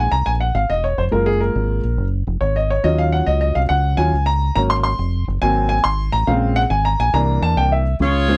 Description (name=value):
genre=uptempo gospel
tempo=140 BPM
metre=4/4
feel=swing 66% on 8ths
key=unclear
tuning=A4 = 440 Hz
part: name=warm grand piano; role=accompaniment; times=0.0-8.4 s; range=Db3 to C6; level=-21 LUFS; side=equal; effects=none
part: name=deep dub fingered electric bass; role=bass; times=0.0-8.4 s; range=Fb1 to E2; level=-21 LUFS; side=equal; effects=none
part: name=warm horn section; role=melody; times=8.0-8.4 s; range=F4 to Db5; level=-21 LUFS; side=equal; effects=none
room=little or no reverb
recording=dry, close 1970s-style studio recording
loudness=-18 LUFS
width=mono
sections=0.0-8.0 A section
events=grand piano solo 0.0-8.0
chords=0.0 Ab; 1.1 Gbmaj7; 2.8 Ebm7; 4.6 Ab7sus4; 5.4 Ab7; 6.3 Bbm7; 7.1 C7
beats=0.26 0.69 | 1.12 1.55 1.98 2.41 | 2.84 3.27 3.70 4.13 | 4.56 4.99 5.42 5.85 | 6.28 6.71 7.14 7.57 | 8.00